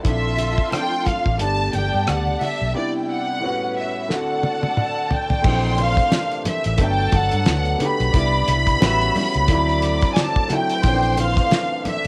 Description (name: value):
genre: lush 1970s-style soul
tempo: 89 BPM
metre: 4/4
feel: swing 58% on 16ths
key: unclear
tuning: A4 = 441 Hz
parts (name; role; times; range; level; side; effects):
- warm studio string section; second line; 0.0-11.8 s; C#4 to E6; -31 LUFS; equal; cassette tape
- clear baby grand piano; accompaniment; 0.0-12.1 s; A2 to G4; -29 LUFS; equal; cassette tape
- cloth-damped thuddy drum kit; drums; 0.0-12.1 s; crash cymbal, hi-hat, kick drum, rim click, snare drum, toms; -24 LUFS; equal; cassette tape
- congas; percussion; 0.0-12.0 s; none; -32 LUFS; equal; none
- rich studio violin section; melody; 0.1-12.1 s; D5 to B5; -25 LUFS; equal; cassette tape
- vintage muted fingered electric bass; bass; 0.1-12.1 s; G1 to G2; -24 LUFS; equal; none
- warm French horn section; sustained chords; 5.4-12.1 s; Bb2 to E4; -34 LUFS; equal; none
room: light reverb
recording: home recording on cassette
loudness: -20 LUFS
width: mono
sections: 0.0-5.4 A section; 5.4-12.1 B section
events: drum fill 4.1-5.4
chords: 0.1 Bbmaj9#11; 1.4 Gadd9; 2.7 Cmaj9; 3.4 A13; 4.1 D7; 5.4 Bbmaj9#11; 6.8 Gmaj9; 8.1 Cmaj9; 8.8 A13; 9.5 D7; 10.8 Bbmaj9#11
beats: | 0.05 0.72 1.40 2.07 | 2.75 3.42 4.10 4.77 | 5.44 6.12 6.79 7.47 | 8.14 8.81 9.49 10.16 | 10.84 11.51